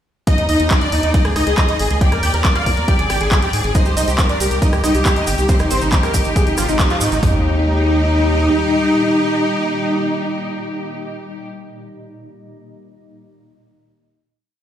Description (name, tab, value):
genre	uplifting trance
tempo	138 BPM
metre	4/4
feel	straight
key	Eb major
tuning	A4 = 440 Hz
part	supersaw chords	melody	0.3-11.5 s	F3 to G5	-19 LUFS	equal	ensemble chorus, sidechain pumping, ping-pong delay
part	analog pluck	second line	0.3-11.8 s	Eb4 to G5	-29 LUFS	equal	none
part	clear chamber violin section	second line	0.3-11.5 s	G4 to Eb5	-24 LUFS	left 1 dB	vintage 12-bit sampler grit, digital delay
part	punchy analog drum machine	drums	0.3-7.3 s	hi-hat, kick drum, toms	-16 LUFS	equal	none
part	punchy analog drum machine	drums	0.3-7.2 s	handclaps, hi-hat, rim click	-24 LUFS	equal	none
part	gritty driven synth bass	bass	0.4-8.5 s	G1 to Ab2	-19 LUFS	equal	tube saturation, sidechain pumping
part	tube shaker	percussion	3.7-7.2 s	none	-28 LUFS	right 5 dB	none
part	shimmering ambient pad	sustained chords	4.4-11.5 s	Bb2 to Eb4	-26 LUFS	equal	chorus, built-in reverb, sidechain pumping
room	light reverb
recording	played on a big sound system in a bare room, stone room reverb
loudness	-14 LUFS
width	side -10 dB against mid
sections	0.3-7.2 drop; 7.2-10.7 final chord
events	drop 0.3-7.2; band accent 6.8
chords	0.3 N.C.; 1.1 Db5; 2.0 Eb; 2.9 G5; 3.8 Cm; 5.5 Ab; 7.2 Eb